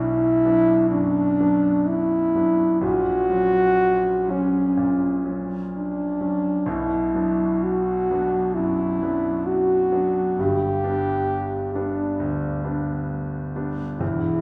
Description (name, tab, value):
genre	classical, romantic duo for French horn and grand piano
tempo	64 BPM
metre	4/4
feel	rubato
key	B minor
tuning	A4 = 439 Hz
part	mellow French horn	melody	0.0-14.4 s	C#4 to G4	-23 LUFS	equal	none
part	clear concert grand piano	accompaniment	0.0-14.4 s	E1 to D4	-28 LUFS	equal	none
room	wet recital hall reverb, RT60 1.4 s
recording	heard from further back in the room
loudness	-22 LUFS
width	mono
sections	0.0-14.4 A section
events	none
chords	0.0 Bm; 2.8 F#/A#; 6.7 Bm; 10.4 G